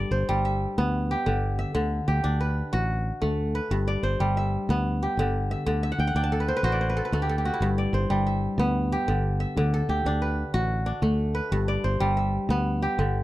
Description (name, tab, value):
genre	west african traditional, West African string and xylophone music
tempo	123 BPM (dotted quarters)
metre	12/8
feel	straight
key	G major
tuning	A4 = 440 Hz
part	kora	arpeggios	0.0-13.2 s	G2 to A5	-26 LUFS	equal	none
part	fingered electric bass	bass	0.0-13.2 s	G1 to D2	-26 LUFS	equal	none
room	studio ambience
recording	dry, close 1970s-style studio recording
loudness	-23 LUFS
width	side -16 dB against mid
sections	0.0-7.6 A section; 7.6-13.2 B section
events	kora fill 5.8-7.6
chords	0.0 G; 1.8 D; 3.7 G; 5.7 D; 7.6 G; 9.6 D; 11.5 G